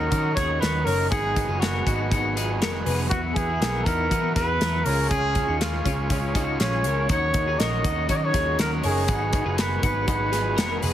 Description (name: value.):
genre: jangly indie pop.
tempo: 120 BPM.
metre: 4/4.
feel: straight.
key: unclear.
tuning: A4 = 439 Hz.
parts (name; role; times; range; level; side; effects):
breathy trumpet; melody; 0.0-10.8 s; F4 to Eb5; -26 LUFS; equal; none.
overdriven combo organ; accompaniment; 0.0-10.9 s; Cb4 to Ab4; -34 LUFS; right 3 dB; none.
raw garage guitar; accompaniment; 0.0-10.9 s; Ab2 to B4; -32 LUFS; right 3 dB; overdrive.
twelve-string electric guitar; arpeggios; 0.0-10.9 s; B3 to Db5; -30 LUFS; left 5 dB; tremolo, ping-pong delay.
vintage muted picked electric bass; bass; 0.0-10.9 s; F1 to E3; -27 LUFS; equal; none.
modern studio drum kit; drums; 0.1-10.9 s; hi-hat, kick drum, snare drum; -27 LUFS; equal; none.
room: small room ambience.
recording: heavily compressed radio sound, multiband compression.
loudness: -21 LUFS.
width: side -11 dB against mid.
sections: 0.0-10.9 A section.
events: none.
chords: 0.0 Ebm7; 1.1 Abm7; 3.1 Esus2; 4.9 Db; 7.1 Ebm7; 9.1 Abm7.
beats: 0.12 0.62 | 1.12 1.62 2.12 2.62 | 3.11 3.61 4.11 4.61 | 5.11 5.61 6.10 6.60 | 7.10 7.59 8.09 8.59 | 9.09 9.58 10.08 10.58.